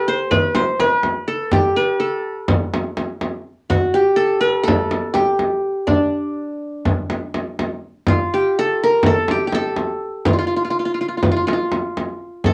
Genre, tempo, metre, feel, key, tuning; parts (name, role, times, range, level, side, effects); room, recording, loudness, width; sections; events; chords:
Turkish makam ensemble; 248 BPM (eighths); 9/8; straight; A4 = 440 Hz
qanun; melody; 0.0-12.5 s; D4 to C5; -20 LUFS; equal; cassette tape
frame drum; percussion; 0.3-12.5 s; -22 LUFS; equal
moderate studio reverb, RT60 0.5 s; home recording on cassette, small room ambience; -19 LUFS; mono
0.0-8.1 A section; 8.1-12.5 B section